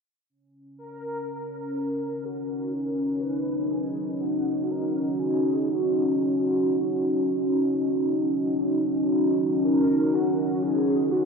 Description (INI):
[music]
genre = ambient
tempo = 61 BPM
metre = 4/4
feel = straight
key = Eb minor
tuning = A4 = 440 Hz
[part]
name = deep dark ambient pad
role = sustained chords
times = 1.1-11.3 s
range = Db4 to Gb4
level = -23 LUFS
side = equal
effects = chorus, built-in reverb
[part]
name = mellow horn-like synth lead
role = melody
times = 0.8-11.3 s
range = Gb4 to Cb5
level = -33 LUFS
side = left 1 dB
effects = ensemble chorus, ping-pong delay
[sound]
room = wet cathedral reverb, RT60 5.6 s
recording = worn, warbling old tape, cassette tape, warbly pitch drift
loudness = -23 LUFS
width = side -5 dB against mid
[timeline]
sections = 0.3-11.3 A section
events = fade-in on soft synth lead 0.3-11.3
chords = 0.3 Ebm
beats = | 0.29 1.27 2.26 3.24 | 4.23 5.21 6.19 7.18 | 8.16 9.14 10.13 11.11